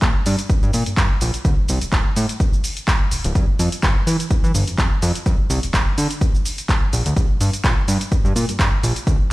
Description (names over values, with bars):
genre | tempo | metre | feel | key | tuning
filtered disco house | 126 BPM | 4/4 | swing 54% on 16ths | unclear | A4 = 439 Hz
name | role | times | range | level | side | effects
fat analog bass | bass | 0.0-9.2 s | D1 to E3 | -20 LUFS | equal | sidechain pumping
electronic kick drum | drums | 0.0-9.2 s | none | -18 LUFS | equal | none
punchy analog drum machine | drums | 0.0-9.2 s | cabasa, handclaps, hi-hat | -24 LUFS | right 1 dB | sidechain pumping on hats, sidechain pumping on perc
room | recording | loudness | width
little or no reverb | played on a big sound system in a bare room, stone room reverb | -16 LUFS | side -19 dB against mid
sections
0.0-9.3 A section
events
none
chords
none